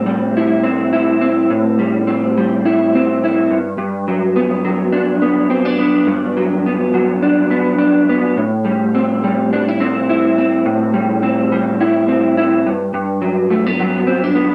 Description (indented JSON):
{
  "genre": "indie pop",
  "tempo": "105 BPM",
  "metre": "4/4",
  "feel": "swing 55% on 16ths",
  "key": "A dorian",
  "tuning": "A4 = 440 Hz",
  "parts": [
    { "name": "electric guitar through a small old amp", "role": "solo", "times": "0.0-14.5 s", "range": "G2 to E4", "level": "-15 LUFS", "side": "equal", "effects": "ensemble chorus, warbly pitch drift, slapback echo" }
  ],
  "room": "wet small room reverb, RT60 0.6 s",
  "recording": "dark, warm production",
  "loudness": "-15 LUFS",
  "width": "mono",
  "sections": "0.0-14.5 A section",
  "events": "none",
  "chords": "0.0 Am7; 3.5 Gmaj7; 8.4 Am7; 12.7 Gmaj7"
}